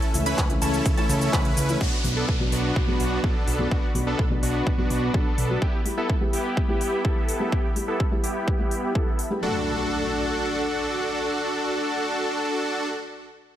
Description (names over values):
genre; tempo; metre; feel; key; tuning
EDM, festival progressive house; 126 BPM; 4/4; straight; D major; A4 = 440 Hz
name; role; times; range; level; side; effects
lush unison pad; sustained chords; 0.0-12.9 s; C#4 to B5; -35 LUFS; left 2 dB; chorus, phaser, sidechain pumping
wide unison pluck; arpeggios; 0.0-1.8 s; A5 to B5; -33 LUFS; right 1 dB; sidechain pumping, digital delay
supersaw chords; riff; 0.0-12.9 s; B3 to B4; -26 LUFS; equal; sidechain pumping, low-pass filter, digital delay
big-room dance drum kit; drums; 0.0-9.3 s; crash cymbal, handclaps, hi-hat, shaker; -32 LUFS; equal; overdrive
felt-muted upright piano; accompaniment; 0.1-12.9 s; B2 to G4; -30 LUFS; left 2 dB; sidechain pumping, digital delay
fat analog bass; bass; 0.1-5.6 s; B1 to C#2; -28 LUFS; equal; sidechain pumping
electronic kick drum; drums; 0.4-9.0 s; none; -24 LUFS; equal; overdrive
downlifter and impact; sound effects; 1.8-5.6, 9.4-12.9 s; none; -35 LUFS; equal; none
room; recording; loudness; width
light reverb; none; -22 LUFS; side -11 dB against mid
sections
0.0-1.8 A section; 1.8-9.4 B section; 9.4-13.2 C section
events
drop 0.0-1.8; filter sweep on supersaw synth 1.8-9.4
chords
0.0 A/C#; 1.8 Bm; 5.6 Em; 9.4 D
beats
0.38 0.86 1.33 | 1.81 2.29 2.76 3.24 | 3.71 4.19 4.67 5.14 | 5.62 6.09 6.57 7.05 | 7.52 8.00 8.47 8.95 | 9.43 9.90 10.38 10.86 | 11.33 11.81 12.29 12.76